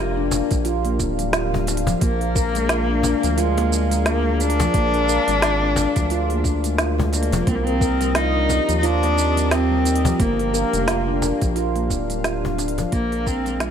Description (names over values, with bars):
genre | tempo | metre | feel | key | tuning
organic downtempo | 88 BPM | 4/4 | swing 58% on 16ths | Bb mixolydian | A4 = 438 Hz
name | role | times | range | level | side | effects
rich cello | melody | 0.0-13.7 s | Ab3 to Eb4 | -23 LUFS | equal | ping-pong delay
warm analog pad | sustained chords | 0.0-13.7 s | C4 to Eb6 | -28 LUFS | equal | chorus, sidechain pumping
handpan | arpeggios | 0.0-13.7 s | F3 to Bb4 | -24 LUFS | left 1 dB | ping-pong delay
round analog bass | bass | 0.0-13.7 s | D1 to Eb2 | -23 LUFS | equal | tube saturation, sidechain pumping
organic electronic drum kit | drums | 0.3-13.7 s | hi-hat, shaker, snare drum | -26 LUFS | right 1 dB | small room ambience
cajon | percussion | 0.3-13.6 s | none | -27 LUFS | left 2 dB | none
electronic kick drum | drums | 0.5-13.4 s | none | -22 LUFS | equal | small room ambience
room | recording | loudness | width
light reverb | none | -18 LUFS | side -8 dB against mid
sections
0.0-13.7 A section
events
fade-out 11.1-13.7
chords
0.0 Gm7; 2.0 Bb7; 7.5 Cm7; 10.2 Gm7; 12.9 Bb7